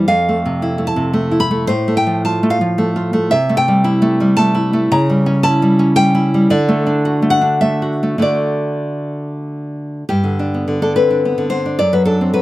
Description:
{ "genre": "romantic piece for solo classical guitar", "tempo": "94-116 BPM", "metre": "3/4", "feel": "rubato", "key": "G major from 3.3 s", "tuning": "A4 = 440 Hz", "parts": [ { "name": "nylon-string guitar", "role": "solo", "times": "0.0-12.4 s", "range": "F2 to B5", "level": "-13 LUFS", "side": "equal", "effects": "none" } ], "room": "little or no reverb", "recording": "recorded outdoors, with no room sound", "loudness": "-13 LUFS", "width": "side -17 dB against mid", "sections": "0.0-10.1 A section; 10.1-12.4 B section", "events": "none", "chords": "0.1 Fmaj7; 1.7 F/A; 3.3 Am7/C; 4.9 C#dim7; 6.5 D; 10.1 G; 11.8 D7/F#" }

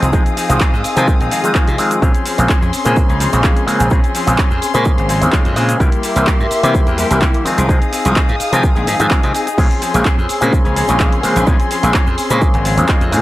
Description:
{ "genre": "filtered disco house", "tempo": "127 BPM", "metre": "4/4", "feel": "swing 53% on 16ths", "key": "Bb minor", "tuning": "A4 = 440 Hz", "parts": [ { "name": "auto-wah clav", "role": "accompaniment", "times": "0.0-13.2 s", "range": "Db3 to C5", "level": "-18 LUFS", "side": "equal", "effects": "overdrive, phaser, vintage 12-bit sampler grit, sidechain pumping" }, { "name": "dark symphonic violin section", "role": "sustained chords", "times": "0.0-13.2 s", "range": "Ab4 to Eb6", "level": "-22 LUFS", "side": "left 1 dB", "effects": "vintage 12-bit sampler grit, sidechain pumping" }, { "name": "electric guitar with an envelope filter", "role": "riff", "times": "0.0-13.2 s", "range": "F3 to Ab4", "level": "-20 LUFS", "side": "left 4 dB", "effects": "vintage 12-bit sampler grit, sidechain pumping" }, { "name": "glassy slap bass", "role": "bass", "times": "0.0-13.2 s", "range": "Ab1 to C3", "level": "-18 LUFS", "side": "equal", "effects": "sidechain pumping" }, { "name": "punchy analog drum machine", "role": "drums", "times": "0.0-13.2 s", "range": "cabasa, crash cymbal, handclaps, hi-hat", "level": "-23 LUFS", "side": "right 1 dB", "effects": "sidechain pumping on cymbals, sidechain pumping on perc, sidechain pumping on hats" }, { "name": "egg shaker", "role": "percussion", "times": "0.0-13.1 s", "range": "none", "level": "-33 LUFS", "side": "left 1 dB", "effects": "sidechain pumping on perc" }, { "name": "electronic kick drum", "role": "drums", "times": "0.1-13.0 s", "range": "none", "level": "-14 LUFS", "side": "equal", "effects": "none" } ], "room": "little or no reverb", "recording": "dry, gritty hardware recording, transformer saturation", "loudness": "-12 LUFS", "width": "side -16 dB against mid", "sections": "0.0-13.2 A section", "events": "none", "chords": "0.0 Fm7/C; 2.0 Bbm9; 5.8 C7; 7.5 Fm7/C; 9.6 Bbm9" }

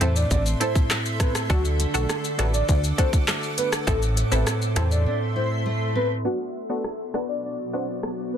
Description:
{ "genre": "dancehall", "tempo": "101 BPM", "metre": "4/4", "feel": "straight", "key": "A dorian", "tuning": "A4 = 440 Hz", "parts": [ { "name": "soft octave-layered synth lead", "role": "melody", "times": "0.0-8.4 s", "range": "F#4 to D5", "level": "-29 LUFS", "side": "left 1 dB", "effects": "chorus, phaser, ping-pong delay" }, { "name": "punchy chord stab", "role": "accompaniment", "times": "0.0-7.9 s", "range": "B3 to A4", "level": "-31 LUFS", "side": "equal", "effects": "chorus" }, { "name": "granular cloud pad", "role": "sustained chords", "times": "0.0-8.4 s", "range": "B3 to D6", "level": "-32 LUFS", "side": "equal", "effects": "built-in reverb, sidechain pumping" }, { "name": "nylon-string guitar", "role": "arpeggios", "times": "0.0-6.3 s", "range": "A2 to F#4", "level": "-28 LUFS", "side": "right 2 dB", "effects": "none" }, { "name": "plucky analog bass", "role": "bass", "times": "0.0-5.1 s", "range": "A1 to E2", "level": "-23 LUFS", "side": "equal", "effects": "none" }, { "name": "island pop drum kit", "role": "drums", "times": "0.0-8.2 s", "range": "handclaps, hi-hat, kick drum, rim click, shaker", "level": "-24 LUFS", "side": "equal", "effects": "overdrive" } ], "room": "digital ambience", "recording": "dense, heavily limited modern master, low-pass filter", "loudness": "-21 LUFS", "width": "side -9 dB against mid", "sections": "0.0-6.3 A section; 6.3-8.4 B section", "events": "break 5.1-6.3; filter sweep 6.3-8.4", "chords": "0.0 Am; 1.5 D; 3.9 Am; 6.3 Bm" }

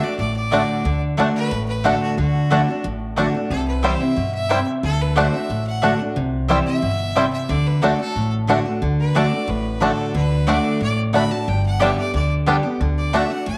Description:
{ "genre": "bluegrass", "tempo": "181 BPM", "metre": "4/4", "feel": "straight", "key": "D mixolydian", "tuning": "A4 = 440 Hz", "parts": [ { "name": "bright fiddle", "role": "second line", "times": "0.0-13.6 s", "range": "F#4 to B5", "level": "-30 LUFS", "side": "equal", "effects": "none" }, { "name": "picked steel-string acoustic guitar", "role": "accompaniment", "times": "0.0-13.6 s", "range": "G2 to G4", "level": "-24 LUFS", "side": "equal", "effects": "none" }, { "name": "upright bass", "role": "bass", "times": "0.2-13.6 s", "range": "G1 to G2", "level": "-25 LUFS", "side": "equal", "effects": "none" }, { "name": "bluegrass banjo", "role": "melody", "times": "0.5-13.2 s", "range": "G3 to E4", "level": "-26 LUFS", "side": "equal", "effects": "none" }, { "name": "mandolin", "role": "stabs", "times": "0.5-13.2 s", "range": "A3 to G5", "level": "-27 LUFS", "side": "equal", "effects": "none" } ], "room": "wet spring reverb, RT60 1.3 s, studio reverb", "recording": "none", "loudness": "-20 LUFS", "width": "mono", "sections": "0.0-13.6 A section", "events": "fiddle solo 0.0-13.6", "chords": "0.0 D; 3.5 C; 4.8 D; 6.2 C; 7.5 D; 11.5 G; 12.8 D" }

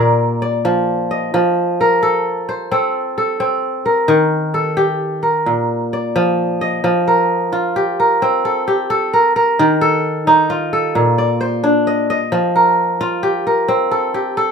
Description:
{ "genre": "west african traditional", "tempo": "88 BPM (dotted quarters)", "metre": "12/8", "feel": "straight", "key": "F mixolydian", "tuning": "A4 = 441 Hz", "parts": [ { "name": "kora", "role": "solo", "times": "0.0-14.5 s", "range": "Bb2 to Eb5", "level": "-14 LUFS", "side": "equal", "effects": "none" } ], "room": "moderate small room reverb, RT60 0.6 s", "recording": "rough home demo mix", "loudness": "-14 LUFS", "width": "side -6 dB against mid", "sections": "0.0-6.8 A section; 6.8-14.5 B section", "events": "none", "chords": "0.0 Bb; 1.3 F; 4.1 Eb; 5.5 Bb; 6.8 F; 9.6 Eb5; 10.9 Bb; 12.3 F" }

